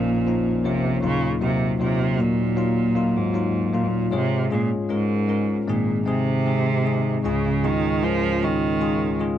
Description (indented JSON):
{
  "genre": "pop",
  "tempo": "77 BPM",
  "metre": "4/4",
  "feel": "straight",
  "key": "Db major",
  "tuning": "A4 = 440 Hz",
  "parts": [
    { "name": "clear cello", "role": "melody", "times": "0.0-9.2 s", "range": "Ab2 to F3", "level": "-23 LUFS", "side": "right 4 dB", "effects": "none" },
    { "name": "bell-like tine electric piano", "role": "accompaniment", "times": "0.0-9.4 s", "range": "Bb1 to Db5", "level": "-23 LUFS", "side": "left 4 dB", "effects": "analog chorus" },
    { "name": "fingerpicked plugged-in steel-string acoustic guitar", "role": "arpeggios", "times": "7.2-9.4 s", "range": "Db3 to Db4", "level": "-30 LUFS", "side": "right 14 dB", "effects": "none" }
  ],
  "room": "moderate booth ambience, RT60 0.2 s",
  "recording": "dry, close 1970s-style studio recording",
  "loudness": "-20 LUFS",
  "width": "side -10 dB against mid",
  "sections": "0.0-9.4 A section",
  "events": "none",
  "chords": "0.0 Bbm; 1.0 Ebmadd9; 4.1 Db/Ab; 5.7 Ab; 7.3 Db"
}